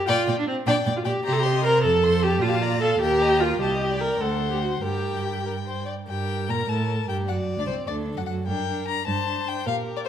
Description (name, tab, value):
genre	quick classical-period movement for string quartet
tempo	101 BPM (dotted quarters)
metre	6/8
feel	rubato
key	G minor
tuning	A4 = 440 Hz
part	rich viola	accompaniment	0.0-10.1 s	C4 to Bb4	-25 LUFS	right 1 dB	none
part	warm violin	melody	0.1-10.1 s	C5 to C6	-30 LUFS	left 9 dB	none
part	rich violin	second line	0.1-10.1 s	A4 to F5	-30 LUFS	left 3 dB	none
part	warm cello	bass	0.1-10.1 s	C2 to C3	-27 LUFS	right 4 dB	none
room	moderate recital hall reverb, RT60 1.5 s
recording	none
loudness	-21 LUFS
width	side -9 dB against mid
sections	0.0-6.1 A section; 6.1-10.1 A section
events	none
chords	0.1 Gm/Bb; 1.2 Cm7; 1.8 F; 2.4 Bbmaj7; 3.0 Eb; 3.6 Am7b5/C (rootless); 4.2 D7; 4.8 Gm; 7.3 D7; 8.5 Gm